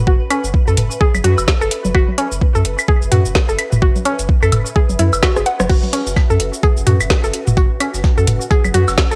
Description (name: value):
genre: minimal techno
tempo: 128 BPM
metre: 4/4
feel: swing 59% on 16ths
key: unclear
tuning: A4 = 440 Hz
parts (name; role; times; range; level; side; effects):
- round analog bass; bass; 0.0-9.2 s; F#1 to F#2; -21 LUFS; equal; tube saturation, sidechain pumping
- ethereal airy pad; texture; 0.0-9.2 s; C#4 to F#5; -34 LUFS; equal; ensemble chorus, built-in reverb, sidechain pumping, cassette tape
- pulsing gated texture; texture; 0.0-9.2 s; F#4 to B4; -32 LUFS; equal; chorus, built-in reverb, sidechain pumping, cassette tape
- mallet-like synth pluck; riff; 0.1-9.1 s; C#4 to F#5; -22 LUFS; equal; chorus, sidechain pumping, cassette tape, analog delay
- electronic kick drum; drums; 0.1-9.1 s; none; -17 LUFS; equal; overdrive, cassette tape
- garage drum kit; drums; 0.3-9.2 s; crash cymbal, hi-hat, rim click, shaker, snare drum; -23 LUFS; equal; overdrive, cassette tape
- electronic woodblock, toms and congas; percussion; 0.3-9.0 s; none; -22 LUFS; equal; cassette tape, tape echo
- breakbeat sampler-style drum kit; drums; 5.7-9.2 s; hi-hat, snare drum, tambourine; -34 LUFS; equal; none
room: light reverb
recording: home recording on cassette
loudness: -15 LUFS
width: mono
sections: 0.0-9.2 A section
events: drum fill 5.2-5.7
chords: 0.0 F#sus4